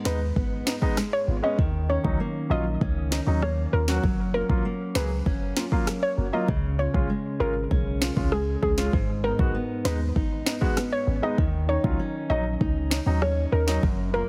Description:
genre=dancehall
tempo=98 BPM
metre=4/4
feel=straight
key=unclear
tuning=A4 = 441 Hz
part: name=warm baby grand piano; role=accompaniment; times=0.0-14.2 s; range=F#3 to G#4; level=-34 LUFS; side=equal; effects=none
part: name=fingerpicked steel-string acoustic guitar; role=arpeggios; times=0.0-14.3 s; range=F#2 to D#4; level=-34 LUFS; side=equal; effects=none
part: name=soft round pluck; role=melody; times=0.1-14.2 s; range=G#4 to D#5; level=-32 LUFS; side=equal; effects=chorus, delay
part: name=clean 808-style bass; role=bass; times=0.1-14.2 s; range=F#1 to D#2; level=-29 LUFS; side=equal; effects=none
part: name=afro-pop drum kit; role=drums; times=0.1-14.0 s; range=kick drum, rim click, snare drum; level=-29 LUFS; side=equal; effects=none
room=small room ambience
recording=heavily compressed radio sound, multiband compression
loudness=-25 LUFS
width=mono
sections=0.0-14.3 A section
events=break 0.0-8.9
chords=0.0 G#m; 1.6 D#m7; 4.0 F#maj7; 6.5 C#; 8.9 G#m; 11.4 D#m7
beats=0.36 0.97 | 1.59 2.20 2.81 3.42 | 4.04 4.65 5.26 5.87 | 6.48 7.10 7.71 8.32 | 8.93 9.54 10.16 10.77 | 11.38 11.99 12.61 13.22 | 13.83

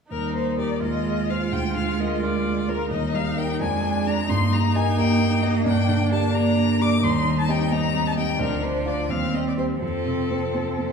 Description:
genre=quick classical-period movement for piano quartet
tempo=86 BPM (dotted quarters)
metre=6/8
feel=straight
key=Eb major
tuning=A4 = 440 Hz
part: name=rich violin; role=melody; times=0.1-10.9 s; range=A4 to D6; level=-27 LUFS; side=left 6 dB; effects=none
part: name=clear cello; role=second line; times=0.1-10.9 s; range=F3 to Bb3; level=-26 LUFS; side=right 5 dB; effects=none
part: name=dark baby grand piano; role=accompaniment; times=0.1-10.9 s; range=D2 to F5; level=-24 LUFS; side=equal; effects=none
part: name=rich viola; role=accompaniment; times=0.1-10.9 s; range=C4 to F4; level=-30 LUFS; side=right 3 dB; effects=none
room=wet recital hall reverb, RT60 1.6 s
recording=small room ambience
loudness=-20 LUFS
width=side -6 dB against mid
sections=0.1-10.9 A section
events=none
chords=0.1 Eb; 0.8 Fm7/Eb; 1.5 Bb7/D; 2.9 Eb; 3.6 Ddim/F; 4.3 Eb/G; 5.7 Gm; 7.0 Cm/Eb; 8.4 Dm7; 9.1 Cm/Eb; 9.8 F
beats=| 0.11 0.81 | 1.51 2.21 | 2.90 3.60 | 4.29 4.98 | 5.66 6.34 | 7.03 7.71 | 8.40 9.10 | 9.82 10.55

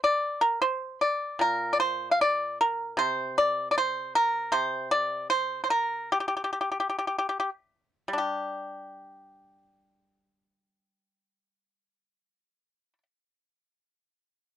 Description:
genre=chinese traditional, Chinese solo plucked strings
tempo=47-79 BPM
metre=2/4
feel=rubato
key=G yu mode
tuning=A4 = 439 Hz
part: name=pipa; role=solo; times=0.0-13.0 s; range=Bb2 to F5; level=-25 LUFS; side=equal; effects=none
room=little or no reverb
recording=dry, close 1970s-style studio recording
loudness=-25 LUFS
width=side -11 dB against mid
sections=0.0-8.2 A section; 8.2-13.0 B section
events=slowing down 4.5-8.2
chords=none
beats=0.61 | 1.41 2.20 | 2.99 3.76 | 4.53 5.30 | 6.12 7.06 | 8.20 9.42 | 10.61 11.79

